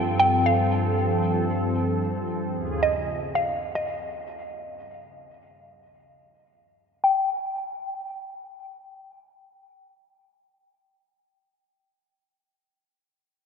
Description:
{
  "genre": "amapiano",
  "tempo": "free time",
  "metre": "none",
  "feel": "none",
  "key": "unclear",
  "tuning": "A4 = 435 Hz",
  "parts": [
    { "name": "mallet-like synth pluck", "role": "melody", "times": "0.0-11.5 s", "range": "Eb5 to G5", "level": "-25 LUFS", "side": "equal", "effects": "chorus, phaser, low-pass filter, diffuse ambient delay" },
    { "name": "lush unison pad", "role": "sustained chords", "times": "0.0-2.8 s", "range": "Eb2 to A4", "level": "-25 LUFS", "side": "equal", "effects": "chorus, low-pass filter" }
  ],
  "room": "wet cathedral reverb, RT60 4.6 s",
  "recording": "dreamy mix soaked in reverb",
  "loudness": "-22 LUFS",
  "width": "side -6 dB against mid",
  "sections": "0.0-7.0 A section; 7.0-11.2 B section",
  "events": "none",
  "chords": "0.0 G9sus4; 2.5 Eb9sus4; 7.0 N.C."
}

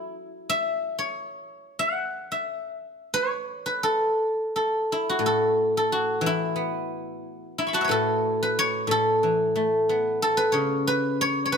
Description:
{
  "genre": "chinese traditional, Chinese solo plucked strings",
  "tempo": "91 BPM",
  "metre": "4/4",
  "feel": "rubato",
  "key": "A gong mode",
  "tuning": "A4 = 441 Hz",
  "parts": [
    { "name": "guzheng", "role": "solo", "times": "0.0-11.6 s", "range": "A2 to C#6", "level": "-23 LUFS", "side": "equal", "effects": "none" }
  ],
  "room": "light reverb",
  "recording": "close, detailed microphones",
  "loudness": "-22 LUFS",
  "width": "side -6 dB against mid",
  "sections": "0.0-5.2 A section; 5.2-11.6 B section",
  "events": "none",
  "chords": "none"
}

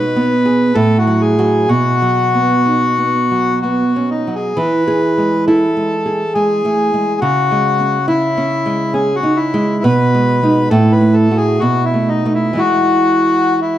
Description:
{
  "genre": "romantic duo for bandoneon and classical guitar",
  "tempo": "57-71 BPM",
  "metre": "3/4",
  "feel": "rubato",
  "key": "E major",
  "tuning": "A4 = 439 Hz",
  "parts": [
    { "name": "bandoneon", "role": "melody", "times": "0.0-13.8 s", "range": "D#4 to B4", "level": "-16 LUFS", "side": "left 2 dB", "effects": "none" },
    { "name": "nylon-string guitar", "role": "accompaniment", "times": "0.0-13.8 s", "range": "A2 to G#4", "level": "-14 LUFS", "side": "right 2 dB", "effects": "none" }
  ],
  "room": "moderate recital hall reverb, RT60 1.4 s",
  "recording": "dark, warm production",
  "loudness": "-12 LUFS",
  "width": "side -12 dB against mid",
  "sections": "0.0-13.8 A section",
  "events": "none",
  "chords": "0.0 G#m/B; 0.8 F#m/A; 1.7 B; 4.6 E; 7.2 C#m; 9.8 G#m/B; 10.7 F#m/A; 11.6 B7; 12.6 E"
}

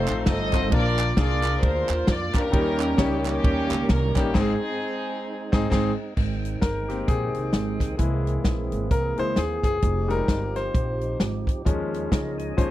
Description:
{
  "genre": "uptempo gospel",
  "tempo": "131 BPM",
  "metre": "4/4",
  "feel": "swing 59% on 8ths",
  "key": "Ab major",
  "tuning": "A4 = 442 Hz",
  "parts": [
    { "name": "warm studio string section", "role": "melody", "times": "0.0-5.7 s", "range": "Bb3 to Eb5", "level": "-27 LUFS", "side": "equal", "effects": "none" },
    { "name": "bright concert grand piano", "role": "accompaniment", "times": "0.0-12.7 s", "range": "Ab2 to Db5", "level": "-27 LUFS", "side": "left 4 dB", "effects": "none" },
    { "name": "tonewheel organ", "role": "sustained chords", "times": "0.0-12.7 s", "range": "Eb3 to Ab5", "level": "-33 LUFS", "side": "right 3 dB", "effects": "slow rotary speaker" },
    { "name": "upright bass", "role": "bass", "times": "0.0-12.7 s", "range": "F1 to F2", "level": "-27 LUFS", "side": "right 1 dB", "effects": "none" },
    { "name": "natural country drum kit", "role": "drums", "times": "0.1-12.7 s", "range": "crash cymbal, hi-hat, kick drum, ride cymbal, snare drum", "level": "-23 LUFS", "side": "equal", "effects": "none" },
    { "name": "group handclap", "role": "percussion", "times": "0.1-4.2 s", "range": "none", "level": "-35 LUFS", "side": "right 11 dB", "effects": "none" },
    { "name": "warm French horn section", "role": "sustained chords", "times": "6.2-12.7 s", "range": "F3 to G#4", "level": "-38 LUFS", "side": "right 3 dB", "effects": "none" }
  ],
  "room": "little or no reverb",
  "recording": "dry, close 1970s-style studio recording",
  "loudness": "-21 LUFS",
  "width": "side -14 dB against mid",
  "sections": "0.0-6.2 A section; 6.2-12.7 B section",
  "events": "band accent 4.3-6.2; grand piano solo 6.2-12.7",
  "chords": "0.0 F7; 0.7 Bb; 2.5 Eb7; 4.3 Ab; 6.2 Abmaj7; 8.0 C7alt; 9.8 Fm9; 11.7 Eb7sus4"
}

